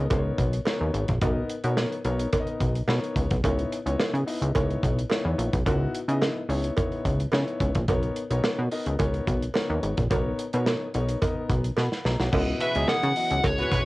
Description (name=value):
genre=early-eighties boogie funk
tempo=108 BPM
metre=4/4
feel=straight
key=C# dorian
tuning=A4 = 440 Hz
part: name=warm grand piano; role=accompaniment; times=0.0-13.8 s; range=B3 to B5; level=-30 LUFS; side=left 2 dB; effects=none
part: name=plucky analog bass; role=bass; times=0.0-13.8 s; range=G#1 to C#3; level=-26 LUFS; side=equal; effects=none
part: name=modern studio drum kit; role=drums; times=0.1-13.8 s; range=crash cymbal, hi-hat, kick drum, snare drum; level=-28 LUFS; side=equal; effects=cassette tape
part: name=cowbell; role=percussion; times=0.1-13.6 s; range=none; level=-31 LUFS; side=right 4 dB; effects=none
part: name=string machine, full ensemble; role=sustained chords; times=12.3-13.8 s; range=B2 to F#4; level=-38 LUFS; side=equal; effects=none
part: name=nasal lead guitar with a parked wah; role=melody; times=12.6-13.8 s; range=C#5 to F#5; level=-25 LUFS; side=left 1 dB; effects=overdrive, cassette tape
part: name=clear horn section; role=second line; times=12.6-13.8 s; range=E3 to B4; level=-30 LUFS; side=right 1 dB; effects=none
room=little or no reverb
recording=home recording on cassette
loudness=-23 LUFS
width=side -20 dB against mid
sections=0.0-12.3 A section; 12.3-13.8 B section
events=drum fill 11.8-12.3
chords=0.0 Bmaj9; 3.4 C#m9; 7.9 Bmaj9; 12.3 C#m11